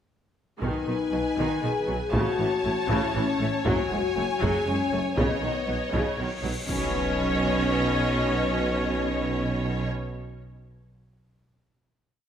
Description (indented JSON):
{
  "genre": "cinematic, epic orchestral film score",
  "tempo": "119 BPM",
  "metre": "3/4",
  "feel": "straight",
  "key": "B mixolydian",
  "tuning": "A4 = 440 Hz",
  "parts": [
    { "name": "rich symphonic violin section", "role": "melody", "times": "0.6-9.9 s", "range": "D#5 to A5", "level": "-33 LUFS", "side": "left 4 dB", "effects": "none" },
    { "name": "rich symphonic violin section", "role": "second line", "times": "0.6-9.9 s", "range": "B4 to C#5", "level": "-32 LUFS", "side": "left 2 dB", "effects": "none" },
    { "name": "rich symphonic viola section", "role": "accompaniment", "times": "0.6-9.9 s", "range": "C#3 to C#4", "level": "-31 LUFS", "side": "right 1 dB", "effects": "none" },
    { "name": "dark French horn section", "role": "sustained chords", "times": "0.6-9.9 s", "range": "B3 to G#4", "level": "-30 LUFS", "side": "left 5 dB", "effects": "none" },
    { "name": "clear studio double bass section", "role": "bass", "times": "0.6-9.9 s", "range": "F#1 to B1", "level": "-33 LUFS", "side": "right 2 dB", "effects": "none" },
    { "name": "mellow tuba", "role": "bass", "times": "0.6-9.9 s", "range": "F#1 to B1", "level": "-33 LUFS", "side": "right 4 dB", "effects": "none" },
    { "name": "rich symphonic cello section", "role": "bass", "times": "0.6-9.9 s", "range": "F#2 to B2", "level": "-34 LUFS", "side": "right 2 dB", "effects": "none" },
    { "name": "solo taiko drums", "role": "drums", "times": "0.6-6.4 s", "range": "none", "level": "-30 LUFS", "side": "equal", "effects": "none" },
    { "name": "cymbal swell and impact", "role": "sound effects", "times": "6.2-8.2 s", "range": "none", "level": "-38 LUFS", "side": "equal", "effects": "none" }
  ],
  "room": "moderate scoring stage reverb, RT60 1.7 s",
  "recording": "none",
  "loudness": "-23 LUFS",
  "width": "side -9 dB against mid",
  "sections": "0.6-6.7 theme; 6.7-9.7 final chord",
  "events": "cymbal swell 6.2-6.7; impact 6.7-8.2",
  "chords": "0.6 B6; 2.1 A; 3.7 F#sus2; 5.2 Badd9"
}